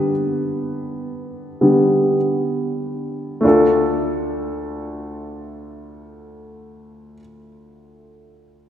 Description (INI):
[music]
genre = pop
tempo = free time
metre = none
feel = none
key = D minor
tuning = A4 = 442 Hz
[part]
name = clear baby grand piano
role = accompaniment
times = 0.0-8.7 s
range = D2 to B4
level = -18 LUFS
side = equal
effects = none
[sound]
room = wet lush hall reverb, RT60 2.8 s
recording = rough home demo mix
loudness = -17 LUFS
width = side -10 dB against mid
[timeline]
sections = 0.0-3.4 A section; 3.4-8.5 B section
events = slowing down 0.0-3.4; grand piano solo 0.0-3.4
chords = 0.0 G; 3.4 Dm